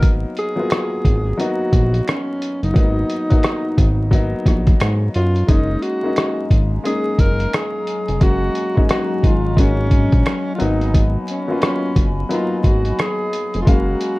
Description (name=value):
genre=lo-fi hip hop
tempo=88 BPM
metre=4/4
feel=swing 62% on 16ths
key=unclear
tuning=A4 = 444 Hz
part: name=warm tenor saxophone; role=melody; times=0.0-14.2 s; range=C#4 to A#4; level=-23 LUFS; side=equal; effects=low-pass filter
part: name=warm upright piano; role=accompaniment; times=0.0-14.2 s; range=F#3 to E#5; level=-24 LUFS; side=left 2 dB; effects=cassette tape, low-pass filter
part: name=fat analog bass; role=bass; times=0.0-14.0 s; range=E#1 to G#2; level=-19 LUFS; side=equal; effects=none
part: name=lo-fi sampler-style drum kit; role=drums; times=0.0-14.2 s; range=hi-hat, kick drum, rim click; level=-16 LUFS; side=equal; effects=none
part: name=finger snap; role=percussion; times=0.7-13.2 s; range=none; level=-36 LUFS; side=right 4 dB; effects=none
part: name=warbly tape-like pad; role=sustained chords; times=5.5-14.2 s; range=F#3 to B5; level=-29 LUFS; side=left 1 dB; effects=chorus, built-in reverb, low-pass filter
room=light reverb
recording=dark, warm production, vinyl crackle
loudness=-15 LUFS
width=side -21 dB against mid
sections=0.0-14.2 A section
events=none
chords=0.0 G#m7; 5.5 F#69; 10.6 G#m7; 13.7 F#maj9